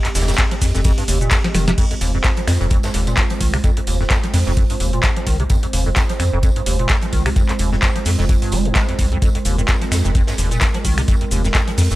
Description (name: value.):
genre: acid house.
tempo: 129 BPM.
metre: 4/4.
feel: swing 56% on 16ths.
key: F minor.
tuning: A4 = 441 Hz.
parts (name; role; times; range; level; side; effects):
warbly tape-like pad; sustained chords; 0.0-12.0 s; Ab3 to Eb5; -26 LUFS; right 4 dB; chorus, built-in reverb, sidechain pumping.
liquid acid bass; riff; 0.0-12.0 s; Eb2 to Ab3; -23 LUFS; equal; tube saturation, analog chorus, analog delay.
booming analog drum machine; drums; 0.0-12.0 s; crash cymbal, finger snaps, handclaps, hi-hat, ride cymbal, shaker, snare drum; -22 LUFS; equal; none.
round analog bass; bass; 0.2-12.0 s; F1 to F2; -19 LUFS; equal; sidechain pumping.
gated 80s drum kit; drums; 0.2-12.0 s; hi-hat, snare drum, tambourine; -31 LUFS; right 1 dB; high-pass filter on hats, high-pass filter on snare, high-pass filter on perc, high-pass filter on room.
electronic kick drum; drums; 0.4-11.7 s; none; -18 LUFS; equal; none.
room: little or no reverb.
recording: none.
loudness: -15 LUFS.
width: side -17 dB against mid.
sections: 0.0-1.8 A section; 1.8-12.0 B section.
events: drop 0.0-1.8; drum fill 1.4-1.8.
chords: 0.0 Fm.